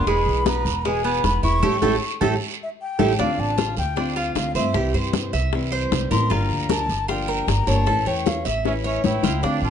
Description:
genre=latin, Cuban son and guajira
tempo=154 BPM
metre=4/4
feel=straight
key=D minor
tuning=A4 = 436 Hz
part: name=breathy wooden flute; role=melody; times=0.0-9.7 s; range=E5 to C#6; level=-26 LUFS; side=left 4 dB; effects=plate reverb
part: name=nylon-string guitar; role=accompaniment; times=0.0-9.7 s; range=B2 to G4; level=-28 LUFS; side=left 4 dB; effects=none
part: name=Cuban tres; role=arpeggios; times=0.0-9.7 s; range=G#3 to E5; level=-25 LUFS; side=right 6 dB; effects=none
part: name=upright bass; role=bass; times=0.0-9.7 s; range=E1 to G2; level=-24 LUFS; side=right 1 dB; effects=none
part: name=bongos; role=percussion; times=0.1-9.6 s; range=none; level=-28 LUFS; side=left 10 dB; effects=none
part: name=congas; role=percussion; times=0.1-9.7 s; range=none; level=-27 LUFS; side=left 4 dB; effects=none
part: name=guiro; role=percussion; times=0.1-9.7 s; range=none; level=-33 LUFS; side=right 8 dB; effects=none
part: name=growling trumpet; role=second line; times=8.7-9.7 s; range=C#4 to F4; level=-31 LUFS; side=right 10 dB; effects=none
room=moderate large studio reverb, RT60 0.9 s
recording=dark, warm production, nothing above 10.7 kHz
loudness=-19 LUFS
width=side -8 dB against mid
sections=0.0-3.2 A section; 3.2-9.7 A section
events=drum fill 1.6-3.2, 8.7-9.4; band accent 1.6-3.2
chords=0.1 E; 1.6 A7; 3.2 Dm7; 4.8 C; 6.3 Gm7; 7.9 A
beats=| 0.07 0.46 0.85 1.24 | 1.63 2.02 2.41 2.80 | 3.19 3.58 3.97 4.36 | 4.75 5.14 5.53 5.92 | 6.31 6.70 7.09 7.48 | 7.87 8.26 8.65 9.04 | 9.43

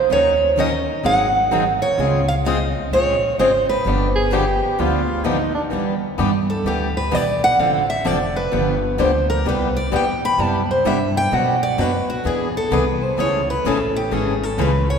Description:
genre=acoustic string swing (jazz manouche)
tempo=128 BPM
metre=4/4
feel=swing 63% on 8ths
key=E minor from 5.7 s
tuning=A4 = 440 Hz
part: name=picked steel-string acoustic guitar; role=melody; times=0.0-15.0 s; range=F#4 to B5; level=-19 LUFS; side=right 2 dB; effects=none
part: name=picked steel-string acoustic guitar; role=accompaniment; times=0.1-14.7 s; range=B2 to B4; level=-26 LUFS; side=right 4 dB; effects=none
part: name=picked swing-style acoustic guitar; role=accompaniment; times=0.1-14.7 s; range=B2 to Bb4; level=-24 LUFS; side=left 6 dB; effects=none
part: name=upright bass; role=bass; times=0.1-15.0 s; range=F1 to B2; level=-24 LUFS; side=left 1 dB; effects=none
part: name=clear soprano saxophone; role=second line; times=4.2-5.6 s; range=D4 to Ab4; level=-24 LUFS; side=right 1 dB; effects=none
room=wet church reverb, RT60 3.3 s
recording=recorded in a church or concert hall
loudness=-16 LUFS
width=side -6 dB against mid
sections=0.0-5.7 A section; 5.7-15.0 B section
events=steel-string acoustic guitar solo 5.7-15.0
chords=0.1 Ebm7; 1.0 Ab7; 2.0 Dbmaj7; 3.9 G7; 5.7 Em7; 7.6 Dm7; 8.5 G7; 9.5 Cmaj7; 11.3 Bm7; 12.3 E7; 13.2 Amaj7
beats=| 0.11 0.58 1.04 1.51 | 1.98 2.45 2.92 3.38 | 3.85 4.32 4.79 5.25 | 5.72 6.19 6.66 7.12 | 7.59 8.06 8.52 8.99 | 9.46 9.92 10.39 10.86 | 11.32 11.79 12.26 12.72 | 13.19 13.65 14.12 14.59

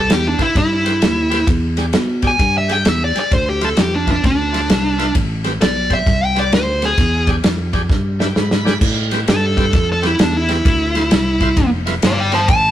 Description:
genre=electric blues shuffle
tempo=131 BPM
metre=4/4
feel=swing 64% on 8ths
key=A minor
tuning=A4 = 438 Hz
part: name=dark smooth lead guitar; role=melody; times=0.0-12.7 s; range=D4 to A5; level=-17 LUFS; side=equal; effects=overdrive
part: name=fingered electric bass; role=bass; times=0.0-12.7 s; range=F1 to B2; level=-20 LUFS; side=equal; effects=none
part: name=warm soul drum kit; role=drums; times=0.1-12.6 s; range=crash cymbal, kick drum, ride cymbal, snare drum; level=-17 LUFS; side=equal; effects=none
part: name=bright tonewheel organ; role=accompaniment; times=0.4-12.4 s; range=C4 to B5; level=-26 LUFS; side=equal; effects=overdrive, slow rotary speaker
room=moderate stone room reverb, RT60 1.3 s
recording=rough rehearsal-room recording, tube saturation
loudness=-13 LUFS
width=side -12 dB against mid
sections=0.0-8.8 A section; 8.8-12.7 B section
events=drum fill 7.9-8.8; tonewheel organ fill 7.9-8.8; lead electric guitar solo 8.8-12.7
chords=0.0 Am7 (rootless); 1.5 E7#9; 3.3 Dm7; 5.2 Am7; 7.0 E7#9; 8.8 Am7; 10.7 Dm7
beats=0.10 0.56 1.02 | 1.48 1.94 2.40 2.86 | 3.31 3.77 4.23 4.69 | 5.15 5.61 6.07 6.53 | 6.99 7.45 7.90 8.36 | 8.82 9.28 9.74 10.19 | 10.65 11.11 11.57 12.03 | 12.48

